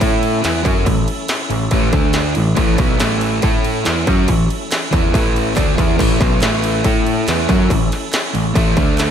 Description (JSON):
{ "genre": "classic rock", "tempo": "140 BPM", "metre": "4/4", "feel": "straight", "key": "A major", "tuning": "A4 = 440 Hz", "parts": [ { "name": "tonewheel organ", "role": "sustained chords", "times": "0.0-9.1 s", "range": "A3 to A4", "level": "-27 LUFS", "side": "left 1 dB", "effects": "slow rotary speaker, overdrive, chorus vibrato" }, { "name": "overdriven semi-hollow guitar", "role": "riff", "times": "0.0-9.1 s", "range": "A2 to A4", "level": "-18 LUFS", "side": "equal", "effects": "none" }, { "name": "overdriven picked electric bass", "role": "bass", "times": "0.0-9.1 s", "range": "A1 to A2", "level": "-20 LUFS", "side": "equal", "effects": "none" }, { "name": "industrial drum kit", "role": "drums", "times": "0.0-9.1 s", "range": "crash cymbal, kick drum, snare drum", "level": "-18 LUFS", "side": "equal", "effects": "distortion" }, { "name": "group handclap", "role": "percussion", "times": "3.0-9.1 s", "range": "none", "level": "-34 LUFS", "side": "right 3 dB", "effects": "none" } ], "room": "light reverb, digital ambience", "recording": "none", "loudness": "-14 LUFS", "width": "side -8 dB against mid", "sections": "0.0-6.0 A section; 6.0-9.1 A section", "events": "kick and snare drop out 5.6-6.0", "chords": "0.0 A; 1.9 D5; 2.4 A" }